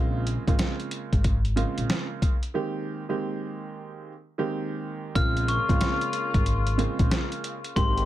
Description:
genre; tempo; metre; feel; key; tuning
hip hop, boom-bap hip-hop; 92 BPM; 4/4; swing 63% on 16ths; unclear; A4 = 439 Hz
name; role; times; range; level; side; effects
warm upright piano; accompaniment; 0.0-8.1 s; Db3 to G4; -30 LUFS; right 4 dB; high-pass filter, low-pass filter
upright bass; bass; 0.0-8.1 s; Ab1 to Bb1; -26 LUFS; equal; none
boom bap sampler-style drum kit; drums; 0.3-8.1 s; hi-hat, kick drum, snare drum; -25 LUFS; equal; none
glockenspiel with hard plastic mallets; melody; 5.2-8.1 s; C6 to F6; -29 LUFS; left 3 dB; high-pass filter, low-pass filter, plate reverb, ping-pong delay
warm horn section; stabs; 5.2-8.1 s; Db3 to G4; -34 LUFS; left 5 dB; high-pass filter, low-pass filter, ping-pong delay
room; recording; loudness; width
light reverb; none; -24 LUFS; side -14 dB against mid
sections
0.0-5.2 A section; 5.2-8.1 B section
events
break 2.5-5.2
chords
0.0 Bbm7; 2.5 Abmaj7; 5.2 Bbm7

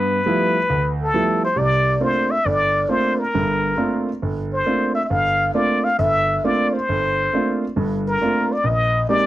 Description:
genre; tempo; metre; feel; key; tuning
jazz; 136 BPM; 4/4; swing 66% on 8ths; C mixolydian; A4 = 440 Hz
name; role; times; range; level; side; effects
trumpet with plunger mute; melody; 0.0-9.3 s; A4 to F5; -19 LUFS; left 1 dB; none
warm concert grand piano; accompaniment; 0.0-9.3 s; G1 to G4; -21 LUFS; right 2 dB; none
room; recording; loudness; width
little or no reverb; dry, close 1970s-style studio recording; -17 LUFS; side -14 dB against mid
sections
0.0-1.6 A section; 1.6-9.3 B section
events
none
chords
0.0 G13; 1.6 C13sus4; 8.6 Bb13sus4

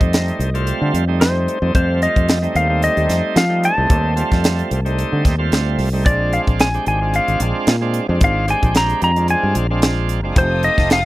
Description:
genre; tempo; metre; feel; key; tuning
straight-eighth soul blues; 111 BPM; 4/4; swing 55% on 16ths; F mixolydian; A4 = 441 Hz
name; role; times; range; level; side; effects
clean lap steel guitar; melody; 0.0-11.1 s; C5 to Bb5; -19 LUFS; left 1 dB; none
bright tonewheel organ; accompaniment; 0.0-11.0 s; G3 to G4; -23 LUFS; right 3 dB; overdrive, slow rotary speaker
fingered electric bass; bass; 0.0-11.1 s; F1 to F3; -19 LUFS; equal; none
tight funk drum kit; drums; 0.0-11.0 s; hi-hat, kick drum, snare drum; -17 LUFS; equal; none
warm studio string section; sustained chords; 10.4-11.1 s; F5 to Eb6; -27 LUFS; left 2 dB; none
room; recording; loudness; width
little or no reverb; dry, close 1970s-style studio recording; -14 LUFS; side -17 dB against mid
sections
0.0-11.1 A section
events
none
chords
0.0 F7; 6.1 Bb7; 10.4 F7

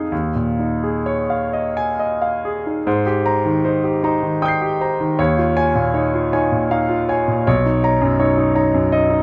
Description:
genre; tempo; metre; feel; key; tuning
classical, impressionist solo piano; 63-83 BPM; 3/4; rubato; Ab major; A4 = 440 Hz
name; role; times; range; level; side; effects
clear concert grand piano; solo; 0.0-9.2 s; B1 to C7; -18 LUFS; equal; none
room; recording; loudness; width
light reverb; close, detailed microphones; -18 LUFS; mono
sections
0.0-2.9 A section; 2.9-9.2 B section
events
none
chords
0.1 Eb9sus4; 2.9 Abmaj9; 5.2 Eb11; 7.5 Bmaj9

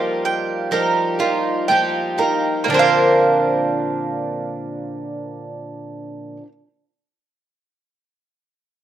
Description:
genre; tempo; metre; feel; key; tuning
acoustic folk duo or small band; 60 BPM; 4/4; straight; Bb major; A4 = 439 Hz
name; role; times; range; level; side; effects
clear upright piano; melody; 0.0-1.6 s; Bb4; -30 LUFS; left 1 dB; none
pedal steel guitar; second line; 0.0-1.6 s; G4; -41 LUFS; right 5 dB; none
picked twelve-string acoustic guitar; accompaniment; 0.0-6.5 s; Bb2 to Bb4; -21 LUFS; left 2 dB; none
mandolin; arpeggios; 0.0-6.5 s; G3 to G5; -20 LUFS; right 4 dB; slapback echo
room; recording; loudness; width
little or no reverb; recorded outdoors, with no room sound; -16 LUFS; side -11 dB against mid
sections
0.0-2.7 A section; 2.7-6.7 B section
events
slowing down 0.0-2.7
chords
0.0 Ebadd9; 2.7 Bbadd9

